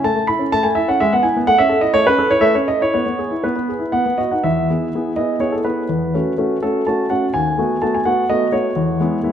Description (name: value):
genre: classical-period piano sonatina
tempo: 125 BPM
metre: 3/4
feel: rubato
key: E major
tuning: A4 = 437 Hz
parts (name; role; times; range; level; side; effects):
- clear concert grand piano; solo; 0.0-9.3 s; D#2 to B5; -15 LUFS; equal; none
room: wet recital hall reverb, RT60 1.7 s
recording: none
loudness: -15 LUFS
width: side -9 dB against mid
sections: 0.0-4.4 A section; 4.4-9.3 B section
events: none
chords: 0.0 A; 1.0 E/G#; 1.5 A; 2.9 E/B; 3.9 B; 4.4 E; 5.9 F#m7/E; 7.3 B7/D#; 8.8 E